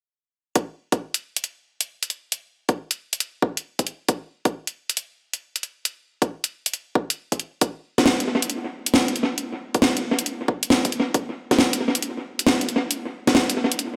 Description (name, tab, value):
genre	UK garage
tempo	136 BPM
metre	4/4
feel	swing 66% on 16ths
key	none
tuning	none
part	electronic kick drum	drums	0.6-13.3 s	none	-24 LUFS	equal	high-pass filter on kick, high-pass filter on room
part	house drum kit	drums	0.6-13.9 s	hi-hat, snare drum	-23 LUFS	equal	analog delay
room	wet echo chamber reverb, RT60 1.8 s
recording	echo-heavy mix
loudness	-24 LUFS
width	mono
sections	0.6-14.0 A section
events	none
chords	none